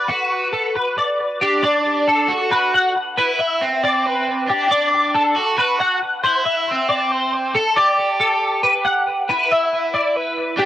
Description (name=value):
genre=rock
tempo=275 BPM (eighths)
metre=7/8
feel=straight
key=unclear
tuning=A4 = 440 Hz
part: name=overdriven semi-hollow guitar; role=melody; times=0.0-10.7 s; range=C4 to B4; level=-21 LUFS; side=right 3 dB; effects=cassette tape
part: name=twelve-string electric guitar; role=arpeggios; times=0.0-10.7 s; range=F#4 to F#5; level=-17 LUFS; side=left 2 dB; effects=ensemble chorus, cassette tape, analog delay
room=moderate booth ambience, RT60 0.2 s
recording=home recording on cassette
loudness=-16 LUFS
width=side -12 dB against mid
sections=0.0-1.6 A section; 1.6-10.7 B section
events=none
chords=0.0 Gmaj7; 1.6 D6; 3.2 Cmaj9; 4.7 D6; 6.2 C69; 7.8 Gmaj9; 9.3 G6 (rootless)